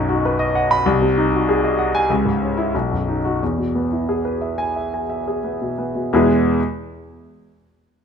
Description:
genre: classical, virtuoso piano study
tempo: 87-99 BPM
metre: 4/4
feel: rubato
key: E major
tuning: A4 = 438 Hz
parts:
  - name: clear grand piano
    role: solo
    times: 0.0-6.6 s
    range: B1 to B5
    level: -17 LUFS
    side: left 1 dB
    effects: none
room: moderate recital hall reverb, RT60 1.7 s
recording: close, detailed microphones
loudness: -17 LUFS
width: side -7 dB against mid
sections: 0.0-6.1 A section; 6.1-8.0 B section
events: none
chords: 0.0 B; 0.9 G#7/B#; 2.1 C#m; 2.7 B; 3.4 E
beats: 0.25 | 0.86 1.48 2.10 2.74 | 3.41 4.09 4.77 5.44 | 6.11

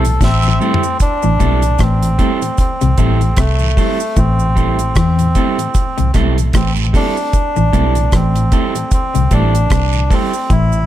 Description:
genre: roots reggae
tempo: 76 BPM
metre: 4/4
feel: swing 57% on 16ths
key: A minor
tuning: A4 = 440 Hz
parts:
  - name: melodica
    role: melody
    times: 0.0-10.9 s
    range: A3 to E5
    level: -19 LUFS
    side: equal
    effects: tape echo
  - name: electric guitar at the edge of break-up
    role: accompaniment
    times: 0.0-10.3 s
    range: G3 to A4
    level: -22 LUFS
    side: right 7 dB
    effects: tape echo
  - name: mellow tonewheel organ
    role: accompaniment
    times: 0.0-10.8 s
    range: A2 to C4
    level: -24 LUFS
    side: left 2 dB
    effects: slow rotary speaker, tape echo
  - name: semi-hollow electric guitar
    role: riff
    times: 0.0-10.7 s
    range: A2 to E3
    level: -21 LUFS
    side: left 5 dB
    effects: ensemble chorus
  - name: vintage muted fingered electric bass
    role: bass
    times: 0.0-10.9 s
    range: A1 to E2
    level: -14 LUFS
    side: equal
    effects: none
  - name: deep reggae drum kit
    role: drums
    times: 0.0-10.7 s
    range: hi-hat, kick drum, rim click, snare drum, toms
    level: -16 LUFS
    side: equal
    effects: none
  - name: cabasa and guiro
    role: percussion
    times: 0.1-10.9 s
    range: none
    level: -29 LUFS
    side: right 11 dB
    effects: none
room: little or no reverb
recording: none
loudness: -12 LUFS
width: side -12 dB against mid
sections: 0.0-1.0 A section; 1.0-10.9 B section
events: melodica solo 0.0-1.0; drum fill 0.2-1.0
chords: 0.0 Am7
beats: 0.21 | 1.00 1.79 2.59 3.38 | 4.17 4.96 5.75 6.54 | 7.34 8.13 8.92 9.71 | 10.50

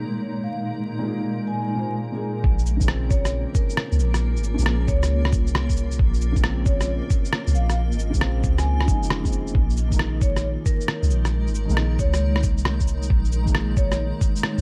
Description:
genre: future garage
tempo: 135 BPM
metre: 4/4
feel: swing 66% on 16ths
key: Bb minor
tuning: A4 = 442 Hz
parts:
  - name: felt-muted upright piano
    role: accompaniment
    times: 0.0-14.6 s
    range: Bb2 to C5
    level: -33 LUFS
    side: equal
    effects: sidechain pumping, digital delay
  - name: granular cloud pad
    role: sustained chords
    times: 0.0-14.6 s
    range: Bb2 to Bb5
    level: -34 LUFS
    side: equal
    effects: built-in reverb, sidechain pumping
  - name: vibraphone with medium mallets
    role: melody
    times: 0.4-14.0 s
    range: Bb4 to Ab5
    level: -36 LUFS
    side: equal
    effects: vintage 12-bit sampler grit, digital delay
  - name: soft 808-style bass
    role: bass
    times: 2.4-14.6 s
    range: F1 to Db2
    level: -25 LUFS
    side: equal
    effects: sidechain pumping
  - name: electronic kick drum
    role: drums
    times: 2.4-14.3 s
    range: none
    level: -24 LUFS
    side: equal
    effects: none
  - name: electronic shaker, cabasa and rim click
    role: drums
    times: 2.6-14.6 s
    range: none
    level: -30 LUFS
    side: equal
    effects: overdrive, low-pass filter on perc, low-pass filter on snare
room: little or no reverb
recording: dark, warm production, vinyl crackle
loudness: -22 LUFS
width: mono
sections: 0.0-2.4 A section; 2.4-14.6 B section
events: none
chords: 0.0 Absus2/Bb; 2.4 Bbm7; 9.5 Absus2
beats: 0.21 | 0.66 1.10 1.55 1.99 | 2.44 2.88 3.33 3.77 | 4.21 4.66 5.10 5.55 | 5.99 6.44 6.88 7.33 | 7.77 8.21 8.66 9.10 | 9.55 9.99 10.44 10.88 | 11.33 11.77 12.21 12.66 | 13.10 13.55 13.99 14.44

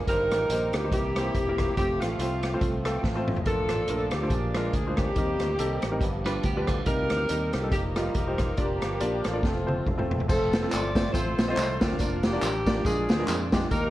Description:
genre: uptempo gospel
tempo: 141 BPM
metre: 4/4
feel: swing 56% on 8ths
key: Bb major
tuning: A4 = 440 Hz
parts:
  - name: muted French horn section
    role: sustained chords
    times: 0.0-10.3 s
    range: Eb3 to A4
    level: -41 LUFS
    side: equal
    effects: none
  - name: tonewheel organ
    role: sustained chords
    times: 0.0-13.9 s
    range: Eb3 to G5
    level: -37 LUFS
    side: right 2 dB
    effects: none
  - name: mellow saxophone section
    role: melody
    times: 0.1-13.9 s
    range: A3 to D5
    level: -29 LUFS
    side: equal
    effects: none
  - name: clear concert grand piano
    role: accompaniment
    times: 0.1-13.9 s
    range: G2 to Eb5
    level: -32 LUFS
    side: left 1 dB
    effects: none
  - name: fingered electric bass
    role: bass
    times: 0.1-13.9 s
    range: E1 to F2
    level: -32 LUFS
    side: equal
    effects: none
  - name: swinging big-band drum kit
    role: drums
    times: 0.1-13.8 s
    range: crash cymbal, hi-hat, kick drum, rim click, snare drum, toms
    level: -28 LUFS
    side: equal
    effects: none
  - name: clean electric guitar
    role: second line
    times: 6.3-7.1 s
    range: A3 to B4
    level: -36 LUFS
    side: right 5 dB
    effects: phaser, tape echo
  - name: tambourine and handclaps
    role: percussion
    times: 10.3-13.8 s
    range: none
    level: -36 LUFS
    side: equal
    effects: none
room: light reverb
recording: worn, warbling old tape, cassette tape, warbly pitch drift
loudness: -24 LUFS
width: side -15 dB against mid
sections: 0.0-10.3 A section; 10.3-13.9 B section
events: tonewheel organ fill 2.6-3.5; drum fill 3.0-3.5, 9.4-10.3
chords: 0.1 Eb6/G; 0.9 C7; 1.8 F; 3.5 Bbmaj7; 4.3 Bb7; 5.2 Eb6; 6.0 G7; 6.9 Cm7; 7.7 F9sus4; 8.6 Bb/F; 9.4 F; 12.0 Bb/F; 12.9 Bb7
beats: | 0.07 0.50 0.92 1.34 | 1.77 2.19 2.62 3.04 | 3.46 3.89 4.32 4.74 | 5.17 5.59 6.02 6.45 | 6.87 7.30 7.73 8.15 | 8.58 9.01 9.44 9.86 | 10.29 10.72 11.14 11.57 | 12.00 12.43 12.86 13.28 | 13.71

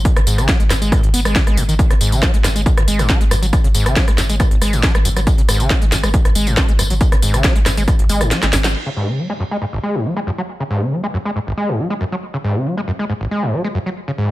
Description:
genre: driving peak-time techno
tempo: 138 BPM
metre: 4/4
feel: straight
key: unclear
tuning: A4 = 438 Hz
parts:
  - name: saturated sub bass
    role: bass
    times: 0.0-8.7 s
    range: G#1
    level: -20 LUFS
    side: equal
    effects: tube saturation, sidechain pumping, low-pass filter
  - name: electronic kick drum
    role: drums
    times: 0.1-8.0 s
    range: none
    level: -15 LUFS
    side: equal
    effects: none
  - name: techno drum kit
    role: drums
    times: 0.1-8.8 s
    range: crash cymbal, hi-hat, rim click, snare drum, tambourine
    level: -20 LUFS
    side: equal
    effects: low-pass filter on snare, sidechain pumping on hats, low-pass filter on hats, sidechain pumping on perc, low-pass filter on perc, sidechain pumping on cymbals, low-pass filter on cymbals, low-pass filter on room
  - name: screaming distorted acid line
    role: riff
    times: 0.2-14.3 s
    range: G#1 to B3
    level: -20 LUFS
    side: equal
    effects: distortion, chorus, cassette tape, sidechain pumping, tape echo
room: light reverb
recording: faint mains hum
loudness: -14 LUFS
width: side -17 dB against mid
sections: 0.0-8.7 A section; 8.7-14.3 B section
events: drop 0.0-8.7; kick drops out 8.3-8.7; drum fill 8.3-8.7; band accent 8.6; filter sweep on acid bass 8.7-14.3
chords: none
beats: | 0.05 0.48 0.92 1.35 | 1.79 2.23 2.66 3.09 | 3.53 3.96 4.40 4.83 | 5.27 5.70 6.14 6.57 | 7.01 7.44 7.88 8.31 | 8.75 9.18 9.62 10.05 | 10.48 10.92 11.36 11.79 | 12.22 12.66 13.09 13.53 | 13.96

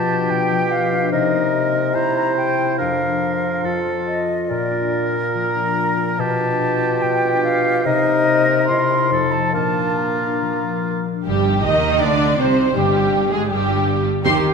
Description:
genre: classical, dramatic, fast romantic movement for symphony orchestra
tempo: 138-162 BPM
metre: 4/4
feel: straight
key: Bb major, C minor from 11.3 s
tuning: A4 = 442 Hz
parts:
  - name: clear oboe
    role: second line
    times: 0.0-11.0 s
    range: F4 to C5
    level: -24 LUFS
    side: right 2 dB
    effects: none
  - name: concert flute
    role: second line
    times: 0.0-11.1 s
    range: D5 to C6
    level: -22 LUFS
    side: left 2 dB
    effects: none
  - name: mellow clarinet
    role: second line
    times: 0.0-11.1 s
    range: D4 to F4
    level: -26 LUFS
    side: right 1 dB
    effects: none
  - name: mellow bassoon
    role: accompaniment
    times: 0.0-11.0 s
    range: Bb2 to Bb3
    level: -23 LUFS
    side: right 2 dB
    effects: none
  - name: concert harp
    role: arpeggios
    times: 0.0-14.5 s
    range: F2 to C5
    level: -24 LUFS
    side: left 9 dB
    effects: none
  - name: warm symphonic viola section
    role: accompaniment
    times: 11.2-14.4 s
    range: G3 to G4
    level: -23 LUFS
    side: equal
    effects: none
  - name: warm symphonic violin section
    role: melody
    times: 11.3-14.4 s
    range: G4 to C6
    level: -26 LUFS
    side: left 2 dB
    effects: none
  - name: warm symphonic violin section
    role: second line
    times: 11.3-14.5 s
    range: G4 to Eb5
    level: -25 LUFS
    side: equal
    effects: none
  - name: dark trumpet section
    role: stabs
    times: 11.3-14.5 s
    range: G4 to Eb5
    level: -20 LUFS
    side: right 3 dB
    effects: none
  - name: rich symphonic cello section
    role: bass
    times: 11.3-14.5 s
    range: G2 to Eb3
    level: -22 LUFS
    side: right 4 dB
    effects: none
  - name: rich symphonic double bass section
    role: bass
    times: 11.3-14.5 s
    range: G1 to Eb2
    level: -24 LUFS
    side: right 4 dB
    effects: none
room: wet scoring stage reverb, RT60 1.6 s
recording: minimal, uncompressed stereo recording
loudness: -16 LUFS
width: side -5 dB against mid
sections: 0.0-11.3 A section; 11.3-14.5 B section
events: none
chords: 0.0 G7/B; 1.1 Cm7; 2.0 C7; 2.8 Bb/F; 3.6 F; 4.5 Bb; 6.2 G7/B; 7.9 Cm7; 8.7 C7; 9.1 F9; 9.5 Bb; 11.3 Cm/G; 12.8 G5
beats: 0.30 0.71 | 1.13 1.54 1.95 2.37 | 2.80 3.22 3.65 4.07 | 4.49 4.92 5.35 5.77 | 6.19 6.61 7.02 7.44 | 7.85 8.27 8.69 9.12 | 9.54 9.98 10.41 10.84 | 11.26 11.64 12.01 12.39 | 12.76 13.13 13.51 13.88 | 14.25

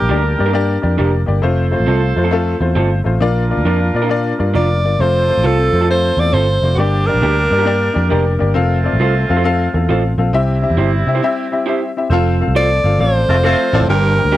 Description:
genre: soul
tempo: 135 BPM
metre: 4/4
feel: swing 66% on 8ths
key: F major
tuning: A4 = 442 Hz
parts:
  - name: clear alto saxophone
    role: melody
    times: 0.0-0.4, 4.6-8.4, 12.6-14.4 s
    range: Gb4 to D5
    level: -17 LUFS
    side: equal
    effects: tape echo
  - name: warm horn section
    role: second line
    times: 0.0-13.8 s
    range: G3 to C5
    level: -23 LUFS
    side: right 2 dB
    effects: none
  - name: warm upright piano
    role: accompaniment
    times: 0.0-14.4 s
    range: G2 to G5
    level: -19 LUFS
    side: left 5 dB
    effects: none
  - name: picked electric bass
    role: bass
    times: 0.0-14.4 s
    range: F1 to C3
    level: -16 LUFS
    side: equal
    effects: none
  - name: electric guitar through a small old amp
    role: stabs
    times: 0.1-14.4 s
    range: C4 to C5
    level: -21 LUFS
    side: right 5 dB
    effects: none
  - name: percussive tonewheel organ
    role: sustained chords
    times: 12.1-14.4 s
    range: D3 to A4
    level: -26 LUFS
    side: right 1 dB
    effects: fast rotary speaker, overdrive, chorus vibrato
  - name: warm baritone saxophone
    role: riff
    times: 12.1-14.2 s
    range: F2 to A2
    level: -20 LUFS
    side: right 6 dB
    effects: none
room: light reverb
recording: none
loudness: -12 LUFS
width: side -14 dB against mid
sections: 0.0-12.1 A section; 12.1-14.4 B section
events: break 11.2-12.1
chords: 0.0 Gm; 1.4 F; 3.2 Bb; 5.0 F; 6.8 Gm; 8.6 F; 10.3 C; 12.1 F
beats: 0.09 0.53 0.98 | 1.43 1.87 2.32 2.77 | 3.21 3.66 4.10 4.55 | 4.99 5.44 5.89 6.33 | 6.78 7.22 7.67 8.11 | 8.56 9.00 9.45 9.89 | 10.34 10.78 11.22 11.67 | 12.11 12.56 13.00 13.44 | 13.89 14.33

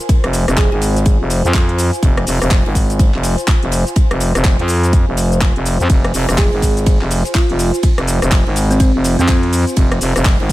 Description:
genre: bass house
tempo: 124 BPM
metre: 4/4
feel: swing 61% on 16ths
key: F minor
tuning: A4 = 440 Hz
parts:
  - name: garage drum kit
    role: drums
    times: 0.0-10.5 s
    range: cabasa, handclaps, hi-hat, ride cymbal, rim click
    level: -22 LUFS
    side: equal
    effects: studio reverb
  - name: airy breathy pad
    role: texture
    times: 0.0-10.5 s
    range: F4 to Ab5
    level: -25 LUFS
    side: left 1 dB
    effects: chorus, sidechain pumping
  - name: electronic kick drum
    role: drums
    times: 0.1-10.5 s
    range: none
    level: -13 LUFS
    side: equal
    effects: studio reverb
  - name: natural country drum kit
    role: drums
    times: 0.1-10.5 s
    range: hi-hat, ride cymbal, snare drum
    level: -32 LUFS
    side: right 2 dB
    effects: high-pass filter on cymbals, studio reverb, high-pass filter on hats, high-pass filter on snare, high-pass filter on room
  - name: growling FM bass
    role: bass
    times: 0.2-10.5 s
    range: F1 to F2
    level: -16 LUFS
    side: equal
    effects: tube saturation, sidechain pumping
  - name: thumb-piano-like synth pluck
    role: melody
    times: 0.6-0.8, 6.4-9.4 s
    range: C4 to Ab4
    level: -22 LUFS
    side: right 1 dB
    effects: chorus, dub echo
room: small room ambience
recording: none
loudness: -12 LUFS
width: side -16 dB against mid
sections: 0.0-10.5 A section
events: none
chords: 0.0 Fm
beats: | 0.09 0.57 1.06 1.54 | 2.03 2.51 2.99 3.48 | 3.96 4.45 4.93 5.41 | 5.90 6.38 6.87 7.35 | 7.83 8.32 8.80 9.29 | 9.77 10.25

